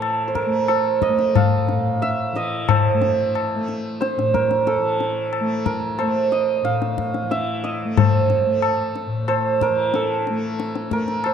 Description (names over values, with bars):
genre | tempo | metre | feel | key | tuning
indian classical, Hindustani | 91 BPM | 4/4 | straight | A raga todi | A4 = 444 Hz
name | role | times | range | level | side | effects
santur | melody | 0.0-11.3 s | A4 to F5 | -21 LUFS | right 5 dB | none
tanpura | drone | 0.0-11.3 s | A2 to A3 | -26 LUFS | left 2 dB | none
tabla | percussion | 0.0-11.3 s | none | -22 LUFS | left 6 dB | none
room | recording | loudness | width
moderate scoring stage reverb, RT60 1.9 s | dark, warm production | -18 LUFS | side -7 dB against mid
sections
0.0-11.3 A section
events
none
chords
none